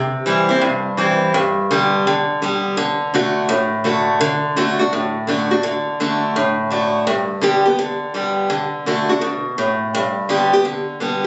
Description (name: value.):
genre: country.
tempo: 168 BPM.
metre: 4/4.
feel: swing 66% on 8ths.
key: G major.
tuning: A4 = 440 Hz.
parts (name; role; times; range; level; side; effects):
picked acoustic archtop guitar; solo; 0.0-11.3 s; G2 to G4; -18 LUFS; equal; none.
room: moderate plate reverb, RT60 2.3 s.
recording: recorded on a phone in the room, club reverb, nothing above 8.0 kHz.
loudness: -18 LUFS.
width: mono.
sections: 0.0-11.3 A section.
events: none.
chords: 0.0 C; 1.3 G; 2.8 D; 7.1 G; 8.5 D; 9.9 G.